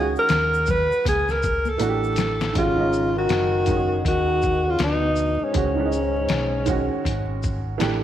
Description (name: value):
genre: hip hop, jazz-hop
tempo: 80 BPM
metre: 4/4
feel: swing 61% on 16ths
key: unclear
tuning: A4 = 440 Hz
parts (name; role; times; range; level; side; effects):
- mellow alto saxophone; melody; 0.0-7.7 s; C#4 to B4; -22 LUFS; equal; none
- warm upright piano; accompaniment; 0.0-8.0 s; D#3 to G#4; -27 LUFS; right 7 dB; none
- hollow-body short-scale fingered electric bass; bass; 0.0-8.0 s; F#1 to D#2; -26 LUFS; equal; none
- tube shaker and congas; percussion; 0.2-2.5 s; none; -36 LUFS; left 7 dB; none
- trip hop sampler-style drum kit; drums; 0.3-8.0 s; hi-hat, kick drum, shaker, snare drum; -27 LUFS; left 2 dB; none
- breathy trombone; second line; 2.6-7.7 s; G#2 to D#3; -28 LUFS; left 7 dB; none
room: moderate echo chamber reverb, RT60 1.8 s, studio reverb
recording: 1960s-style stereo with parts hard left and right, vinyl crackle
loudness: -19 LUFS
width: side -11 dB against mid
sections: 0.0-2.6 A section; 2.6-8.0 B section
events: alto saxophone solo 0.0-2.6; drum fill 1.8-2.6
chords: 0.0 C#sus24; 1.8 A7sus4; 2.6 G#7sus4; 5.6 C#9sus4